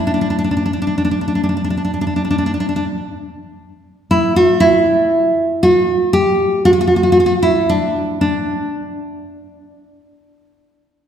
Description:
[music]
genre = arabic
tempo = 116 BPM (eighths)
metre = 10/8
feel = straight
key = unclear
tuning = A4 = 440 Hz
[part]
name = nylon-string guitar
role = melody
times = 0.0-11.1 s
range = D4 to G4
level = -13 LUFS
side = equal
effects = none
[sound]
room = wet concert hall reverb, RT60 1.9 s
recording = recorded in a church or concert hall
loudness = -13 LUFS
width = side -9 dB against mid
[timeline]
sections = 0.0-11.1 A section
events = none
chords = none

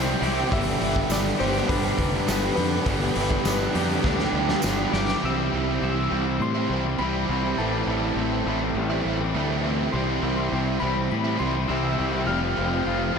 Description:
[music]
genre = rock, shoegaze and dream pop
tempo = 102 BPM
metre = 4/4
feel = straight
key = C major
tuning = A4 = 440 Hz
[part]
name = twangy electric guitar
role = arpeggios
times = 0.0-13.2 s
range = E3 to G4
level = -33 LUFS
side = left 6 dB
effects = analog chorus, diffuse ambient delay
[part]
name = biting overdriven guitar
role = riff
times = 0.0-13.2 s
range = G2 to G4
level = -28 LUFS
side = right 9 dB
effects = reverse reverb
[part]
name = crunchy overdriven guitar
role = riff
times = 0.0-13.2 s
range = G2 to F4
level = -29 LUFS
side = left 7 dB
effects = ensemble chorus
[part]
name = raw garage guitar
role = riff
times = 0.0-13.2 s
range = F2 to C4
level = -30 LUFS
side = right 1 dB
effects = overdrive, spring reverb
[part]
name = growling fingered electric bass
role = bass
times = 0.0-13.2 s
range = F1 to A2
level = -28 LUFS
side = equal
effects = overdrive
[part]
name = raw garage drum kit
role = drums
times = 0.2-5.2 s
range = hi-hat, kick drum, snare drum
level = -28 LUFS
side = equal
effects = none
[part]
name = soft struck synth lead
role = melody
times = 0.5-13.2 s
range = B4 to F6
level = -31 LUFS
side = left 3 dB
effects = chorus, diffuse ambient delay
[part]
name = tambourine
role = percussion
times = 1.1-4.8 s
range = none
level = -38 LUFS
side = right 9 dB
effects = none
[sound]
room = wet lush hall reverb, RT60 2.8 s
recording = dreamy mix soaked in reverb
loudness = -22 LUFS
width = side -6 dB against mid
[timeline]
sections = 0.0-5.2 A section; 5.2-13.2 B section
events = drum fill 4.0-5.2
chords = 0.0 Cadd9; 0.5 G6; 5.2 C; 7.6 Am7; 9.9 C; 12.3 Fadd9

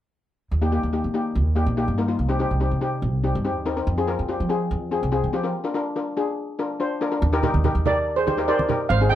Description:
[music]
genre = calypso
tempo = 143 BPM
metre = 4/4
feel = straight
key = Eb major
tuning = A4 = 440 Hz
[part]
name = upright bass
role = bass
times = 0.5-9.2 s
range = Ab1 to F3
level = -23 LUFS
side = right 1 dB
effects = none
[part]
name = steel pan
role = accompaniment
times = 0.6-9.2 s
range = Bb3 to C5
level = -24 LUFS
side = left 3 dB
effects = none
[part]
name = congas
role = percussion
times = 7.4-9.2 s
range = none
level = -27 LUFS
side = right 5 dB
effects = none
[part]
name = steel pan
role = melody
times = 7.9-9.2 s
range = Ab4 to G5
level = -21 LUFS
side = right 4 dB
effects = plate reverb
[sound]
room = light reverb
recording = none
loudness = -21 LUFS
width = side -12 dB against mid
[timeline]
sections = 0.5-7.2 A section; 7.2-9.2 B section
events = break 5.5-7.2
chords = 0.5 Eb; 2.2 Cm; 3.9 Fm; 5.5 Bb; 7.2 Ebmaj7

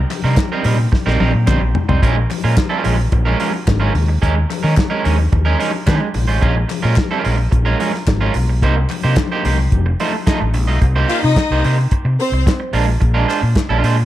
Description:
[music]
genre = disco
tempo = 109 BPM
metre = 4/4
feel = straight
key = unclear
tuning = A4 = 438 Hz
[part]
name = overdriven fingered electric bass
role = bass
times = 0.0-14.0 s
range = F1 to Eb3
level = -16 LUFS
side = equal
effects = none
[part]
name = electric guitar at the edge of break-up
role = accompaniment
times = 0.1-14.0 s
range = G3 to Eb5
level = -20 LUFS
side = right 5 dB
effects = spring reverb
[part]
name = warm soul drum kit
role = drums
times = 0.1-14.0 s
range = hi-hat, kick drum, snare drum, toms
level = -19 LUFS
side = equal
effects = none
[part]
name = congas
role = percussion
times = 0.1-10.7 s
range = none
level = -26 LUFS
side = left 8 dB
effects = none
[part]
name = group handclap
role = percussion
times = 0.1-13.7 s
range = none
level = -33 LUFS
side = left 9 dB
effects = none
[part]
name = clear studio string section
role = second line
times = 11.1-12.4 s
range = C4 to F5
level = -20 LUFS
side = left 3 dB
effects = none
[sound]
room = light reverb, studio reverb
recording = dark, warm production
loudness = -14 LUFS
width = side -14 dB against mid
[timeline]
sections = 0.0-10.8 A section; 10.8-14.1 B section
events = drum fill 0.9-2.0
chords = 0.0 Cm7; 2.0 Bbm7; 4.0 Eb7sus4; 6.2 Bbm7; 8.6 Cm7; 9.7 F7; 10.8 Cm7; 12.7 Bb7

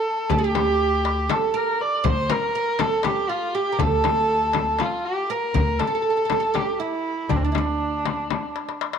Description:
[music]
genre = Turkish makam ensemble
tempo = 240 BPM (eighths)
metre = 7/8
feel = straight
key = D makam ussak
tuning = A4 = 443 Hz
[part]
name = rich kamancheh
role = melody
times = 0.0-8.8 s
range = C4 to D5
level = -23 LUFS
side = equal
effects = none
[part]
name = oud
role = second line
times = 0.0-8.8 s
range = D4 to C5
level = -27 LUFS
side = right 10 dB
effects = none
[part]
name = upright bass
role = bass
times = 0.3-8.3 s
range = D2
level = -26 LUFS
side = equal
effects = none
[part]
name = darbuka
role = percussion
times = 0.3-9.0 s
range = none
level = -29 LUFS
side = left 9 dB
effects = none
[part]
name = frame drum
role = percussion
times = 0.3-8.4 s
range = none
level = -28 LUFS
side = left 7 dB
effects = none
[sound]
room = moderate plate reverb, RT60 2.8 s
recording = 1960s-style stereo with parts hard left and right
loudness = -20 LUFS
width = side -7 dB against mid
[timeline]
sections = 0.0-9.0 A section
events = drum fill 8.6-9.0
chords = none

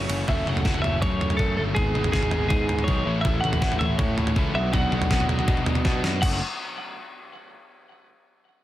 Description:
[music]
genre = indie rock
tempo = 161 BPM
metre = 4/4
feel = straight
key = F# minor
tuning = A4 = 444 Hz
[part]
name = twelve-string electric guitar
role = melody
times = 0.0-6.4 s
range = G#4 to F#5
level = -29 LUFS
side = right 1 dB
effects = warbly pitch drift, digital delay
[part]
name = overdriven electric guitar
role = riff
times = 0.0-6.4 s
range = F#2 to F#4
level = -30 LUFS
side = left 7 dB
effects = none
[part]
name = overdriven electric guitar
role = riff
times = 0.0-6.4 s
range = F#2 to A4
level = -33 LUFS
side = right 7 dB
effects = wide subtle chorus, digital delay
[part]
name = picked electric bass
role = bass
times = 0.0-6.4 s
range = F#1 to B2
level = -27 LUFS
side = equal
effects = none
[part]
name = crisp 8-bit digital drum machine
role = drums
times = 0.1-6.3 s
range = crash cymbal, kick drum, ride cymbal, snare drum, toms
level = -25 LUFS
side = equal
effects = none
[sound]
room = light reverb, digital ambience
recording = dense, heavily limited modern master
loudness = -21 LUFS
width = side -14 dB against mid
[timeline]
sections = 0.3-6.2 A section; 6.2-7.7 B section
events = drum fill 5.9-6.2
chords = 0.3 F#m; 1.8 G#m; 3.1 A; 4.6 Bm; 6.2 F#m

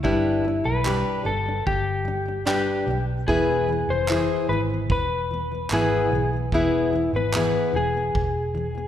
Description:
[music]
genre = acoustic pop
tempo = 74 BPM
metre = 4/4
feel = straight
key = unclear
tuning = A4 = 439 Hz
[part]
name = electric slide guitar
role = melody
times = 0.0-8.9 s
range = E4 to C5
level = -24 LUFS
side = left 2 dB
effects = none
[part]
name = fingerpicked plugged-in steel-string acoustic guitar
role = accompaniment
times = 0.0-8.9 s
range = E3 to B4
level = -26 LUFS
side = left 1 dB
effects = none
[part]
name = vintage muted fingered electric bass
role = bass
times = 0.0-8.9 s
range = E1 to B1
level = -28 LUFS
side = equal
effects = none
[part]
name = cloth-damped thuddy drum kit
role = drums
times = 0.0-8.3 s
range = handclaps, kick drum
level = -30 LUFS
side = right 2 dB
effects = none
[sound]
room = moderate concert hall reverb, RT60 2.0 s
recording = recorded in a church or concert hall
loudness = -21 LUFS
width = side -10 dB against mid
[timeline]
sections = 0.0-8.9 A section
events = none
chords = 0.0 G; 3.3 E

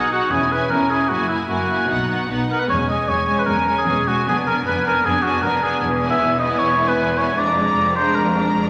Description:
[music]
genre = classical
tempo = 153 BPM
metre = 4/4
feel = straight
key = unclear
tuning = A4 = 440 Hz
[part]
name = clear symphonic violin section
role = melody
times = 0.0-8.7 s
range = F#5 to A#5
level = -30 LUFS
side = equal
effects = none
[part]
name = mellow oboe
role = second line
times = 0.0-8.5 s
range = E4 to E5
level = -21 LUFS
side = equal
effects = none
[part]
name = rich studio violin section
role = second line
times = 0.0-8.7 s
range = C#4 to F#4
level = -30 LUFS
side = equal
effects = none
[part]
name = rich symphonic viola section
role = accompaniment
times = 0.0-8.7 s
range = G#3 to D#4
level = -28 LUFS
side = equal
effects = none
[part]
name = rich chamber cello section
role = bass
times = 0.0-8.7 s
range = E2 to B2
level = -29 LUFS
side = equal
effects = none
[part]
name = warm studio double bass section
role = bass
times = 0.0-8.7 s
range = E1 to B1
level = -31 LUFS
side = equal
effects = none
[sound]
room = wet scoring stage reverb, RT60 1.6 s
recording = none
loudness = -19 LUFS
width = mono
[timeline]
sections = 0.0-8.7 A section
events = none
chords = 0.3 E6; 1.1 F#9; 1.9 B; 2.7 C#m/E; 4.3 Fdim7; 5.8 E; 7.4 A#7/E#

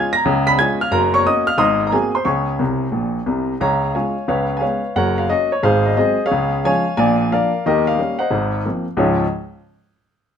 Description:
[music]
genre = jazz, stride piano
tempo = 178 BPM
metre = 4/4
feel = swing 66% on 8ths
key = Db major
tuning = A4 = 440 Hz
[part]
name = warm baby grand piano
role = solo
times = 0.0-9.2 s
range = Gb1 to Cb7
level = -16 LUFS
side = equal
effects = none
[sound]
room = moderate studio reverb, RT60 0.8 s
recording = minimal, uncompressed stereo recording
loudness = -16 LUFS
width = side -8 dB against mid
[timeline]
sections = 0.0-3.6 A section; 3.6-9.0 B section; 9.0-10.3 C section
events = grand piano fill 2.6-3.6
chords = 0.2 Db7; 0.9 Gb; 1.6 Ab9; 2.3 Db5; 3.6 Db; 4.3 Db7; 5.0 Gb; 5.6 Ab7; 6.3 Db; 7.0 Bb7; 7.6 Eb7; 8.3 Ab69; 9.0 Db

